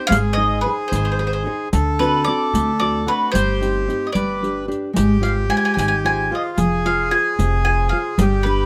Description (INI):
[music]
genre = italian folk, Italian serenade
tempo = 74 BPM (dotted quarters)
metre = 6/8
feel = straight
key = unclear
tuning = A4 = 438 Hz
[part]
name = bowl-back mandolin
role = melody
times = 0.0-8.7 s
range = B4 to Ab5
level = -23 LUFS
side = equal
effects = none
[part]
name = accordion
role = second line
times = 0.0-8.7 s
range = F4 to B4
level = -26 LUFS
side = equal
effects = none
[part]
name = nylon-string guitar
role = accompaniment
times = 0.0-8.7 s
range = C3 to C5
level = -25 LUFS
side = equal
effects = none
[part]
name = upright bass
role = bass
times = 0.1-8.7 s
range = F1 to D2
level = -24 LUFS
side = equal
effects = none
[part]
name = riq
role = percussion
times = 0.1-8.6 s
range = none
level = -27 LUFS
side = equal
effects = none
[sound]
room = studio ambience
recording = rough home demo mix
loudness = -19 LUFS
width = mono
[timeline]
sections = 0.0-8.7 A section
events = none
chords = 0.1 Ab; 1.7 D7; 3.3 Cm/G; 4.2 G; 5.0 Ab6; 6.6 Fm